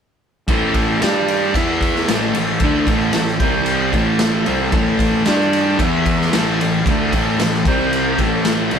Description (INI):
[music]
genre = garage rock duo or trio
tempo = 113 BPM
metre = 4/4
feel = straight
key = A minor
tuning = A4 = 442 Hz
[part]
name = combo organ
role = sustained chords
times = 0.5-8.8 s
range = C4 to E5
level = -24 LUFS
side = equal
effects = none
[part]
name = thick fuzz guitar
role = riff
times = 0.5-8.8 s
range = A2 to G4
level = -18 LUFS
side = equal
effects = distortion
[part]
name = fuzz picked electric bass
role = bass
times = 0.5-8.8 s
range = A1 to G2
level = -26 LUFS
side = right 1 dB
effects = overdrive
[part]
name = raw garage drum kit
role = drums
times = 0.5-8.8 s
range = kick drum, ride cymbal, snare drum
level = -19 LUFS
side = equal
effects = none
[sound]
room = moderate studio reverb, RT60 0.5 s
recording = band playing live in one room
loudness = -14 LUFS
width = side -7 dB against mid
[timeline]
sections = 0.5-8.8 A section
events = none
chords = 0.5 Am; 1.0 G5; 1.5 E5; 2.1 Am; 3.4 C5; 3.9 Am; 5.3 G5; 5.8 E5; 6.3 Am; 7.7 C5; 8.2 Am